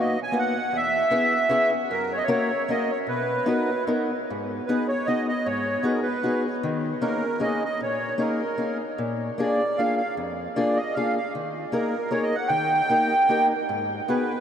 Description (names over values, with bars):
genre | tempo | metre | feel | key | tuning
musette | 153 BPM | 3/4 | swing 54% on 8ths | B major, G# minor from 4.3 s | A4 = 440 Hz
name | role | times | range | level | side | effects
accordion | melody | 0.0-14.4 s | A#4 to G#5 | -24 LUFS | right 1 dB | light tremolo tuning
fingerpicked acoustic archtop guitar | accompaniment | 0.0-14.3 s | E2 to A#4 | -26 LUFS | left 2 dB | none
room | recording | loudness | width
wet huge ambient reverb, RT60 7.6 s | in a vast, echoing space | -22 LUFS | side -8 dB against mid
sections
0.0-4.3 A section; 4.3-14.4 B section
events
none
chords
0.0 Bmaj7; 0.7 E6; 1.9 F#; 3.1 Bmaj7; 4.3 G#m7; 6.6 D#7sus4; 9.0 A#7; 11.3 D#sus4; 12.5 D#; 13.7 G#m7